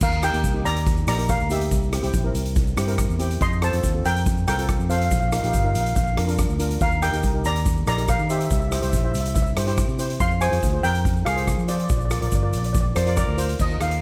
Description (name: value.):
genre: calypso.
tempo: 141 BPM.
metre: 4/4.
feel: straight.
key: Eb major.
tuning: A4 = 440 Hz.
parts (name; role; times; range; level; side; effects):
steel pan; melody; 0.0-14.0 s; F4 to C6; -28 LUFS; equal; none.
fingered electric bass; bass; 0.0-14.0 s; G1 to F3; -26 LUFS; equal; none.
street-band drum kit; drums; 0.0-14.0 s; crash cymbal, hi-hat, kick drum, rim click; -27 LUFS; equal; none.
tube shaker; percussion; 0.0-13.9 s; none; -41 LUFS; equal; none.
steel pan; accompaniment; 0.2-14.0 s; Bb3 to D5; -32 LUFS; equal; none.
breathy alto saxophone; second line; 13.0-13.6 s; Bb4 to C5; -32 LUFS; equal; delay.
room: light reverb.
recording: none.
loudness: -22 LUFS.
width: mono.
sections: 0.0-13.6 A section.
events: none.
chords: 0.0 Eb; 1.7 C; 3.4 F; 5.1 Bbsus4; 6.0 Bb; 6.8 Eb; 8.5 C; 10.2 Fm; 11.9 Bb.